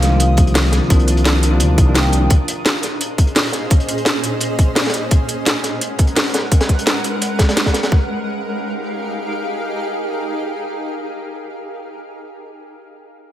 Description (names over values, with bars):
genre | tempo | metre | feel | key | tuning
liquid drum and bass | 171 BPM | 4/4 | straight | F minor | A4 = 440 Hz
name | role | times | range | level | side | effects
vibraphone with hard mallets | melody | 0.0-2.3 s | F5 to G5 | -25 LUFS | equal | tape echo
bell-like tine electric piano | accompaniment | 0.0-2.3 s | C3 to F4 | -20 LUFS | left 1 dB | dub echo
shimmering ambient pad | sustained chords | 0.0-11.5 s | Bb2 to Eb6 | -23 LUFS | equal | chorus, built-in reverb
smooth synth bass | bass | 0.0-2.3 s | C2 to D2 | -15 LUFS | equal | none
crunchy breakbeat drum kit | drums | 0.0-7.9 s | hi-hat, snare drum | -23 LUFS | equal | high-pass filter on hats, high-pass filter on snare, high-pass filter on room
garage drum kit | drums | 0.0-7.8 s | hi-hat, snare drum | -20 LUFS | equal | none
electronic kick drum | drums | 0.4-8.0 s | none | -13 LUFS | equal | none
room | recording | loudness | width
light reverb, small room ambience | none | -14 LUFS | side -12 dB against mid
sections
0.0-7.9 A section; 7.9-10.7 B section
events
none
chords
0.0 Cm11; 2.3 Bbm11; 5.1 Abm11; 7.9 Fm11